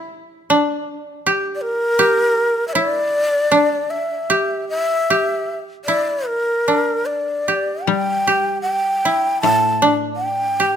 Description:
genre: japanese traditional, Japanese chamber music.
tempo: 77 BPM.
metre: 4/4.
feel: rubato.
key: G kumoi.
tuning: A4 = 440 Hz.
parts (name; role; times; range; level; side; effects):
koto; second line; 0.0-10.8 s; D4 to G4; -19 LUFS; right 1 dB; none.
breathy mellow shakuhachi; melody; 1.6-10.8 s; Bb4 to A5; -18 LUFS; equal; none.
koto; accompaniment; 7.9-10.8 s; A2 to G3; -23 LUFS; left 5 dB; none.
room: light reverb.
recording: close, detailed microphones.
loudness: -16 LUFS.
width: side -8 dB against mid.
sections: 0.0-10.8 A section.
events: none.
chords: none.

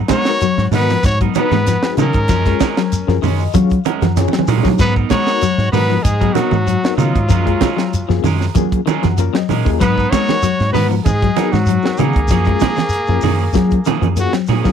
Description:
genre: afrobeat.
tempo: 96 BPM.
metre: 4/4.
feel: straight.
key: G# dorian.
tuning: A4 = 439 Hz.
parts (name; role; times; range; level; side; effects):
electric guitar at the edge of break-up; arpeggios; 0.0-14.7 s; D#3 to G#3; -21 LUFS; left 13 dB; warbly pitch drift, tape echo.
deep dub fingered electric bass; bass; 0.0-14.7 s; C#2 to F#3; -17 LUFS; right 1 dB; none.
warm trumpet; melody; 0.1-14.7 s; E#4 to C#5; -20 LUFS; left 2 dB; none.
clear tenor saxophone; second line; 0.1-14.2 s; F#3 to F#4; -26 LUFS; right 5 dB; none.
electric guitar at the edge of break-up; stabs; 0.1-14.7 s; E#3 to A#4; -24 LUFS; right 14 dB; spring reverb.
tight funk drum kit; drums; 0.1-14.7 s; hi-hat, kick drum, snare drum; -20 LUFS; right 1 dB; none.
congas; percussion; 0.1-14.7 s; none; -19 LUFS; right 16 dB; none.
shekere; percussion; 0.1-14.7 s; none; -23 LUFS; left 1 dB; none.
overdriven reed electric piano; accompaniment; 0.3-14.7 s; A#3 to G#5; -23 LUFS; left 21 dB; fast tremolo.
room: little or no reverb.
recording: dry, close 1970s-style studio recording.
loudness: -13 LUFS.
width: side -8 dB against mid.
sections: 0.0-14.7 A section.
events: reed electric piano fill 2.9-4.8, 8.6-9.8; drum fill 4.2-4.8.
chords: 0.0 G#m9; 2.3 F#maj9; 4.8 G#m9; 7.3 F#maj9; 9.8 G#m9; 12.3 F#maj9.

